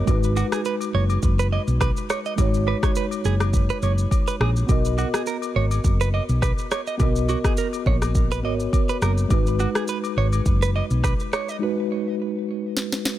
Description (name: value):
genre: afrobeats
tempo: 104 BPM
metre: 4/4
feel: swing 55% on 16ths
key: unclear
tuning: A4 = 440 Hz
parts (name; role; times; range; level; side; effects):
- mellow tine electric piano; accompaniment; 0.0-13.2 s; G#3 to D#5; -27 LUFS; equal; medium stereo tremolo
- hollow-body short-scale fingered electric bass; bass; 0.1-11.1 s; F#1 to B1; -22 LUFS; equal; none
- afro-pop drum kit; drums; 0.1-13.2 s; kick drum, rim click, shaker, snare drum; -23 LUFS; equal; none
- agogo bells; percussion; 0.1-11.5 s; none; -35 LUFS; left 10 dB; none
- direct-recorded clean electric guitar; riff; 0.4-11.6 s; F#4 to D#5; -29 LUFS; right 8 dB; digital delay
room: little or no reverb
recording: none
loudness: -20 LUFS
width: side -13 dB against mid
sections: 0.0-13.2 A section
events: break 11.6-13.2; drum fill 12.8-13.2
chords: 0.0 G#m7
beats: | 0.07 0.65 1.23 1.80 | 2.38 2.96 3.54 4.11 | 4.69 5.26 5.84 6.42 | 7.00 7.57 8.15 8.73 | 9.30 9.88 10.46 11.04 | 11.61 12.19 12.77